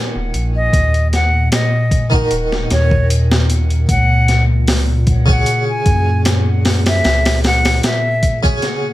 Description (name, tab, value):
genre	trip hop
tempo	76 BPM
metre	4/4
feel	straight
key	unclear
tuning	A4 = 440 Hz
part	harpsichord	accompaniment	0.0-8.9 s	C#3 to C#5	-23 LUFS	right 1 dB	tremolo, tape echo
part	warbly tape-like pad	sustained chords	0.0-8.9 s	A#2	-19 LUFS	equal	chorus, built-in reverb, phaser
part	round analog bass	bass	0.2-7.8 s	D#1 to F#2	-16 LUFS	equal	none
part	boom bap sampler-style drum kit	drums	0.3-8.8 s	hi-hat, kick drum, snare drum	-17 LUFS	equal	none
part	breathy silver concert flute	melody	0.6-8.4 s	C#5 to G#5	-20 LUFS	left 1 dB	tape echo
room	little or no reverb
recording	vinyl crackle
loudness	-12 LUFS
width	side -16 dB against mid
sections	0.0-8.9 A section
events	none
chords	0.0 D#m7; 3.9 C#sus4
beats	| 0.73 1.52 2.31 3.10 | 3.89 4.68 5.47 6.26 | 7.05 7.84 8.63